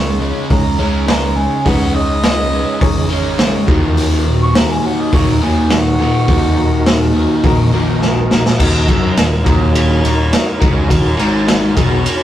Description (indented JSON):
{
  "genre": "classic rock",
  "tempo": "104 BPM",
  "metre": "4/4",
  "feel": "straight",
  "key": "Eb minor",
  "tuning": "A4 = 440 Hz",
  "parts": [
    { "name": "mellow harmonica", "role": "melody", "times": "0.0-7.4 s", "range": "Gb4 to Db6", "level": "-21 LUFS", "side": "right 1 dB", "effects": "none" },
    { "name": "barky reed electric piano", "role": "accompaniment", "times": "0.0-12.2 s", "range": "Eb4 to Bb5", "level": "-22 LUFS", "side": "left 2 dB", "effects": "overdrive, tremolo" },
    { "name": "tonewheel organ", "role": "sustained chords", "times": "0.0-12.2 s", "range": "Eb4 to Fb5", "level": "-27 LUFS", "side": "right 2 dB", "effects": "none" },
    { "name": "overdriven electric guitar", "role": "riff", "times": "0.0-12.0 s", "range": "Eb2 to Db4", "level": "-21 LUFS", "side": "left 1 dB", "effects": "none" },
    { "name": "overdriven electric guitar", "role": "riff", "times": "0.0-12.0 s", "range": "Eb2 to Db4", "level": "-18 LUFS", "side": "equal", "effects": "none" },
    { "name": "modern bright picked electric bass", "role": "bass", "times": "0.0-12.0 s", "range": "Eb1 to Eb2", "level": "-18 LUFS", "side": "equal", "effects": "none" },
    { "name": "raw garage drum kit", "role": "drums", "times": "0.5-12.2 s", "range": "crash cymbal, hi-hat, kick drum, ride cymbal, snare drum", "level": "-15 LUFS", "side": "equal", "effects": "none" }
  ],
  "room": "moderate studio reverb, RT60 0.6 s",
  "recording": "rough rehearsal-room recording, tube saturation",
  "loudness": "-11 LUFS",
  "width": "side -12 dB against mid",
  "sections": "0.0-8.6 A section; 8.6-12.2 B section",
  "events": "harmonica solo 0.0-8.6; reed electric piano fill 7.4-8.6; drum fill 8.0-8.6",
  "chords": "0.0 Dbsus2; 3.7 Ebm"
}